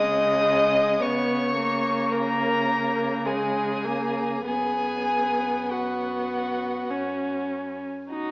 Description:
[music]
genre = classical, slow romantic movement for string quartet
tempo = 48-56 BPM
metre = 3/4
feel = rubato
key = unclear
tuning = A4 = 440 Hz
[part]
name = rich violin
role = melody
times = 0.0-8.3 s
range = D#5 to D#6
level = -28 LUFS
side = left 1 dB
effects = none
[part]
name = rich violin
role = second line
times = 0.0-8.3 s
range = F#4 to D#5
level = -26 LUFS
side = equal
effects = none
[part]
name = rich viola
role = accompaniment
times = 0.0-8.3 s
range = G#3 to D#4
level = -27 LUFS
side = equal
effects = none
[part]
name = warm cello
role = bass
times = 0.0-8.3 s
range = F#2 to C#3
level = -32 LUFS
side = equal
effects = none
[sound]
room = moderate recital hall reverb, RT60 1.5 s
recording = AM radio sound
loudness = -22 LUFS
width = side -27 dB against mid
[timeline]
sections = 0.0-8.1 A section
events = none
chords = 0.0 C#5; 4.5 F#sus4; 6.9 F#5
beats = | 1.00 2.11 3.25 | 4.45 5.69 6.91 | 8.11

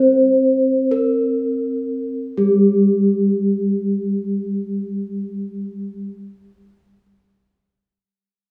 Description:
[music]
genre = gamelan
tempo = free time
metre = none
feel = none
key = unclear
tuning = A4 = 440 Hz
[part]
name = gamelan-type bronze metallophone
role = melody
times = 0.0-6.1 s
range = G4+20c to C5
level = -22 LUFS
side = equal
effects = none
[part]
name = gamelan-type bronze metallophone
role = accompaniment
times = 0.0-6.1 s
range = G3+20c to C4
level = -22 LUFS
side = equal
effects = none
[sound]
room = wet recital hall reverb, RT60 1.8 s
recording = none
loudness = -19 LUFS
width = mono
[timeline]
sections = 0.0-2.2 A section; 2.2-7.6 B section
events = slowing down 0.0-2.2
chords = none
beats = free time

